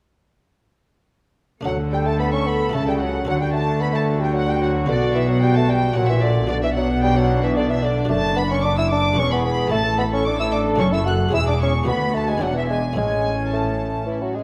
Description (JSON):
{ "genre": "classical, baroque-style concerto movement with solo episodes", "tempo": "111 BPM", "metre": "3/4", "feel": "straight", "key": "D major, A major from 8.1 s", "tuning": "A4 = 440 Hz", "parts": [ { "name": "buff-stop harpsichord", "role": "accompaniment", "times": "1.6-14.4 s", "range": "D2 to D5", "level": "-33 LUFS", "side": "equal", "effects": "none" }, { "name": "dark chamber viola section", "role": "accompaniment", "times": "1.6-14.4 s", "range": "C#4 to A4", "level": "-29 LUFS", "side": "equal", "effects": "none" }, { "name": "mellow bassoon", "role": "melody", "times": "1.7-14.4 s", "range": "D3 to F#4", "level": "-26 LUFS", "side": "equal", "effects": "none" }, { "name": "rich chamber violin section", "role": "melody", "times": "1.7-14.3 s", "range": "D5 to F#6", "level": "-31 LUFS", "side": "equal", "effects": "none" }, { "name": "warm chamber violin section", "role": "second line", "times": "1.7-14.4 s", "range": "E4 to F#6", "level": "-32 LUFS", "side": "equal", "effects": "none" }, { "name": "rich chamber double bass section", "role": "bass", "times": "1.7-14.4 s", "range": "E1 to D2", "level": "-26 LUFS", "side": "equal", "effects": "none" }, { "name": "warm chamber cello section", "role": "bass", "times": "1.7-14.4 s", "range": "D2 to D3", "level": "-27 LUFS", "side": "equal", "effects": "none" } ], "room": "moderate scoring stage reverb, RT60 1.8 s", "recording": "none", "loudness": "-20 LUFS", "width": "mono", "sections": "1.7-14.4 A section", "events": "none", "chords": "1.7 D5; 2.7 A/C#; 3.3 D; 4.9 B5; 6.0 F#/A#; 6.5 Bm; 8.1 D/F#; 9.2 E; 9.7 A; 10.8 F#m; 11.3 C#m/E; 11.9 Bm/D; 12.4 E7; 13.0 A", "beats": "| 1.65 2.20 2.74 | 3.28 3.81 4.35 | 4.89 5.43 5.96 | 6.50 7.03 7.57 | 8.11 8.64 9.18 | 9.72 10.26 10.80 | 11.34 11.87 12.42 | 12.97 13.52 14.07" }